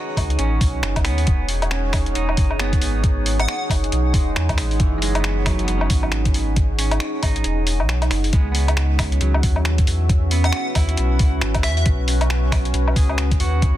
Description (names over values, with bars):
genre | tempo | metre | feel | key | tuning
future garage | 136 BPM | 4/4 | swing 60% on 16ths | unclear | A4 = 440 Hz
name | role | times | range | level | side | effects
electric guitar at the edge of break-up | accompaniment | 0.0-13.8 s | E3 to G#4 | -30 LUFS | right 4 dB | sidechain pumping, tape echo
deep dark ambient pad | sustained chords | 0.0-13.8 s | C#4 to F#5 | -26 LUFS | equal | chorus, built-in reverb, sidechain pumping
warm sub bass | bass | 0.2-13.8 s | E1 to E2 | -20 LUFS | equal | sidechain pumping
electronic kick drum | drums | 0.2-13.7 s | none | -19 LUFS | equal | none
lo-fi sampler-style drum kit | drums | 0.2-13.7 s | finger snaps, hi-hat, woodblock | -26 LUFS | left 1 dB | soft clipping on snare
plucky unison lead | melody | 3.4-3.6, 10.4-11.8 s | E5 to F#5 | -29 LUFS | equal | analog delay
room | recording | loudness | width
little or no reverb | dense, heavily limited modern master | -17 LUFS | side -13 dB against mid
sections
0.0-13.8 A section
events
kick drops out 7.4-8.3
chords
0.0 B7; 1.3 Eadd9; 8.3 C#m; 11.9 B